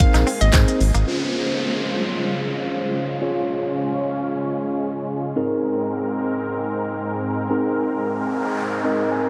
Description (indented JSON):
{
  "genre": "dance-pop",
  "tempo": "112 BPM",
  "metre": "4/4",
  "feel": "straight",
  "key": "Db major",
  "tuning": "A4 = 442 Hz",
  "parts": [
    { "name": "hollow square pluck", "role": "melody", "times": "0.0-0.5 s", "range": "Eb5 to F5", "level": "-32 LUFS", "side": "equal", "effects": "chorus, diffuse ambient delay" },
    { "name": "mellow tine electric piano", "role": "accompaniment", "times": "0.0-9.3 s", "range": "C4 to Ab5", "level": "-26 LUFS", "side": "equal", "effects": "analog chorus, sidechain pumping, low-pass filter" },
    { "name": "filtered supersaw swell", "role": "sustained chords", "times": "0.0-9.3 s", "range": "Ab2 to C5", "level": "-28 LUFS", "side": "equal", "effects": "sidechain pumping, low-pass filter" },
    { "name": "direct-recorded clean electric guitar", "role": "riff", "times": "0.0-1.0 s", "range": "Bb3 to Eb4", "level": "-35 LUFS", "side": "equal", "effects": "none" },
    { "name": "pop drum kit", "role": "drums", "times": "0.0-1.1 s", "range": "handclaps, hi-hat, kick drum, shaker, snare drum", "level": "-22 LUFS", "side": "equal", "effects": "none" },
    { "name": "round analog bass", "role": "bass", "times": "0.1-1.0 s", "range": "Ab1 to Ab2", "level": "-20 LUFS", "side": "equal", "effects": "sidechain pumping" },
    { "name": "group handclap", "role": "percussion", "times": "0.5-0.7 s", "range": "none", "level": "barely audible", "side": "none", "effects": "none" },
    { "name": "downlifter and noise sweep", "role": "sound effects", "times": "1.1-9.3 s", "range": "none", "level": "-31 LUFS", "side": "equal", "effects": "none" }
  ],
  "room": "wet huge ambient reverb, RT60 7.7 s",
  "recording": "dreamy mix soaked in reverb",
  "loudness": "-22 LUFS",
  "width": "mono",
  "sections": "0.0-1.1 A section; 1.1-9.3 B section",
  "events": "drop 0.0-1.1; filter sweep 1.1-9.3; noise sweep 7.9-9.3; tine electric piano fill 8.6-9.3",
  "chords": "0.0 Abadd9; 1.1 Dbmaj7; 5.4 Abadd9"
}